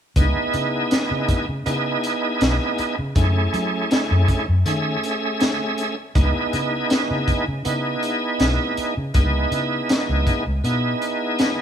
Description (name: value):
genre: straight-eighth soul blues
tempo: 80 BPM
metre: 4/4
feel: swing 53% on 16ths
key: C# minor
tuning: A4 = 436 Hz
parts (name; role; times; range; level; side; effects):
- bright tonewheel organ; accompaniment; 0.2-11.6 s; A3 to E5; -22 LUFS; right 1 dB; slow rotary speaker, overdrive, chorus vibrato
- vintage muted fingered electric bass; bass; 0.2-10.9 s; B1 to F#3; -22 LUFS; equal; none
- crunchy breakbeat drum kit; drums; 0.2-11.6 s; hi-hat, kick drum, snare drum; -22 LUFS; equal; none
room: moderate stone room reverb, RT60 1.3 s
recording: band playing live in one room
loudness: -19 LUFS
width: side -9 dB against mid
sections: 0.2-11.6 A section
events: none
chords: 0.2 C#m7; 3.2 F#m7; 6.2 C#m7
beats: | 0.16 0.91 1.66 2.41 | 3.16 3.91 4.66 5.41 | 6.16 6.90 7.65 8.40 | 9.14 9.89 10.64 11.39